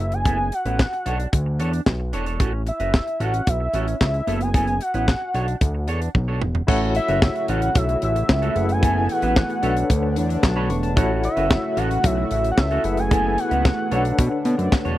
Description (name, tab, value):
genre	early-eighties boogie funk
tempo	112 BPM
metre	4/4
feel	straight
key	B dorian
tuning	A4 = 439 Hz
part	fat analog lead	melody	0.0-14.5 s	E5 to G#5	-25 LUFS	equal	chorus
part	clean electric guitar	riff	0.0-15.0 s	B3 to C#5	-28 LUFS	right 4 dB	wide subtle chorus
part	fat analog bass	bass	0.0-15.0 s	E1 to B2	-23 LUFS	equal	none
part	tight funk drum kit	drums	0.1-15.0 s	crash cymbal, handclaps, hi-hat, kick drum, snare drum, toms	-19 LUFS	equal	none
part	barky tine electric piano	accompaniment	6.7-15.0 s	C#4 to C#6	-26 LUFS	left 3 dB	fast tremolo
part	chorused pulse-width pad	sustained chords	6.7-15.0 s	C#3 to G#5	-30 LUFS	right 3 dB	none
room	little or no reverb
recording	dry, close 1970s-style studio recording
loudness	-18 LUFS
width	side -15 dB against mid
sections	0.0-6.7 A section; 6.7-15.0 B section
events	drum fill 6.1-6.7; tine electric piano fill 10.2-11.0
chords	0.0 F#m7; 1.1 Bm9; 2.4 A6; 4.3 F#m7; 5.3 Bm9; 6.7 A6; 8.6 F#m11; 9.6 Bm9; 11.0 A6; 12.8 F#m11; 13.9 Bm9